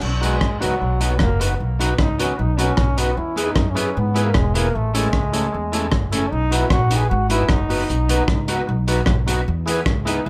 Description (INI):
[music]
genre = ska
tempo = 152 BPM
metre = 4/4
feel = straight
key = B major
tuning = A4 = 440 Hz
[part]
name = upright bass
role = bass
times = 0.0-10.3 s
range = E1 to G#2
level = -24 LUFS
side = equal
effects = none
[part]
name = crunchy breakbeat drum kit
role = drums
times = 0.0-10.2 s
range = crash cymbal, hi-hat, kick drum, rim click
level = -24 LUFS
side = equal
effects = none
[part]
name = bright trombone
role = melody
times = 0.2-10.3 s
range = F#3 to G#4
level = -27 LUFS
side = equal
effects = tape echo
[part]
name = electric guitar at the edge of break-up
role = accompaniment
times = 0.2-10.2 s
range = A3 to B4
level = -29 LUFS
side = equal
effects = ensemble chorus
[part]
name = tonewheel organ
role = stabs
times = 0.2-10.3 s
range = D#4 to C#5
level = -30 LUFS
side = equal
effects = none
[sound]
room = moderate club reverb, RT60 0.7 s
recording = none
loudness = -20 LUFS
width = mono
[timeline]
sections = 0.0-10.3 A section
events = trombone solo 0.0-10.3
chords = 0.0 B; 3.2 E; 4.7 A; 6.3 B; 9.5 E